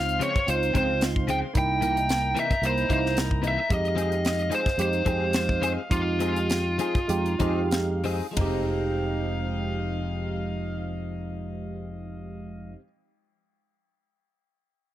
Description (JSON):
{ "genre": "straight-eighth soul blues", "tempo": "90-112 BPM", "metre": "4/4", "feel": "swing 54% on 16ths", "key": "F minor", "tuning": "A4 = 441 Hz", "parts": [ { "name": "biting lead guitar", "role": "melody", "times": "0.0-7.7 s", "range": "F4 to G5", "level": "-26 LUFS", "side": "equal", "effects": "overdrive, plate reverb" }, { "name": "tine electric piano", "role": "accompaniment", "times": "0.0-12.8 s", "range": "Ab3 to F5", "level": "-31 LUFS", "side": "right 5 dB", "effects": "phaser" }, { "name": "clear horn section", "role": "sustained chords", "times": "0.0-12.8 s", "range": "C5 to C6", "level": "-38 LUFS", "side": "left 2 dB", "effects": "plate reverb" }, { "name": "fingered electric bass", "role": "bass", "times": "0.0-12.7 s", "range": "F1 to F2", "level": "-30 LUFS", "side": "equal", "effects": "none" }, { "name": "tight funk drum kit", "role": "drums", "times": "0.1-8.5 s", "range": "hi-hat, kick drum, ride cymbal, snare drum, toms", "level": "-28 LUFS", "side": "equal", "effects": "none" }, { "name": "direct-recorded clean electric guitar", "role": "stabs", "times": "0.2-12.9 s", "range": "C3 to Ab4", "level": "-34 LUFS", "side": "left 6 dB", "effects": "ensemble chorus" } ], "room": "light reverb", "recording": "none", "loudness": "-23 LUFS", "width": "side -13 dB against mid", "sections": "0.0-8.4 A section; 8.4-13.7 B section", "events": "slowing down 3.7-8.4; tine electric piano fill 7.1-8.4", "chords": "0.0 Dbmaj7; 1.6 C7#9; 3.7 Fm7" }